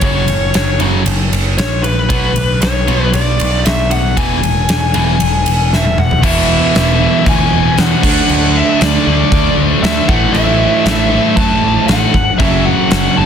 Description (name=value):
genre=hard rock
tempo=116 BPM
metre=4/4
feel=straight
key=unclear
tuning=A4 = 440 Hz
part: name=bluesy overdriven lead guitar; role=melody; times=0.0-13.3 s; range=B4 to A5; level=-17 LUFS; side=left 2 dB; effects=distortion, analog delay
part: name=crunchy overdriven guitar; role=riff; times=0.0-13.3 s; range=E2 to D4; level=-18 LUFS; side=right 12 dB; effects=none
part: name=scooped high-gain guitar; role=riff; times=0.0-13.3 s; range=E2 to D4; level=-18 LUFS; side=left 11 dB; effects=distortion
part: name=growling picked electric bass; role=bass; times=0.0-13.3 s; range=E1 to F#2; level=-16 LUFS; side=equal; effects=overdrive
part: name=huge arena drum kit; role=drums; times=0.0-13.0 s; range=crash cymbal, kick drum, ride cymbal, snare drum, toms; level=-16 LUFS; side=equal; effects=none
part: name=sludgy distorted guitar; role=riff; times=6.2-13.3 s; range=E2 to D4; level=-20 LUFS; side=equal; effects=overdrive
room=studio ambience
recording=dense, heavily limited modern master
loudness=-10 LUFS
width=side -8 dB against mid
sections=0.0-6.2 A section; 6.2-13.3 B section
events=drum fill 5.7-6.2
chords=0.0 F#5; 2.1 Bm; 4.2 E; 8.0 D5; 10.1 A5; 12.4 F#5